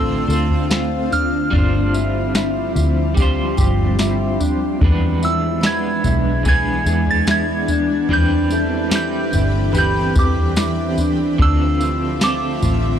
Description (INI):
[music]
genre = dream pop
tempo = 73 BPM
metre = 4/4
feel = straight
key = C major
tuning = A4 = 440 Hz
[part]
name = soft synth bell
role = melody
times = 0.0-13.0 s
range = D6 to A6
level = -23 LUFS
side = right 2 dB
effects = chorus, tape echo
[part]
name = electric guitar at the edge of break-up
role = accompaniment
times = 0.0-13.0 s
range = E2 to C5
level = -24 LUFS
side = right 3 dB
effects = tremolo, analog chorus
[part]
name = shimmering ambient pad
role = sustained chords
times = 0.0-13.0 s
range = D3 to E5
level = -23 LUFS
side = equal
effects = chorus, built-in reverb, tremolo
[part]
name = mellow electric guitar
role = arpeggios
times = 0.0-13.0 s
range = D4 to A4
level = -24 LUFS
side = left 4 dB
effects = lush chorus, tape echo
[part]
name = vintage muted fingered electric bass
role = bass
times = 0.0-13.0 s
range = G1 to E2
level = -21 LUFS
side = equal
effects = none
[part]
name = soft vintage rhythm box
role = drums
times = 0.3-12.8 s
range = kick drum, snare drum, tambourine, toms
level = -20 LUFS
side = equal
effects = none
[part]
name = hammered dulcimer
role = texture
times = 0.7-12.5 s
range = E4 to C5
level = -33 LUFS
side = left 2 dB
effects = tape echo
[sound]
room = little or no reverb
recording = dry, gritty hardware recording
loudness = -15 LUFS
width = side -9 dB against mid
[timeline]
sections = 0.0-13.0 A section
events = none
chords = 0.0 Dm7; 1.5 G7sus4; 4.8 E7; 8.1 Cmaj7; 11.4 Dm7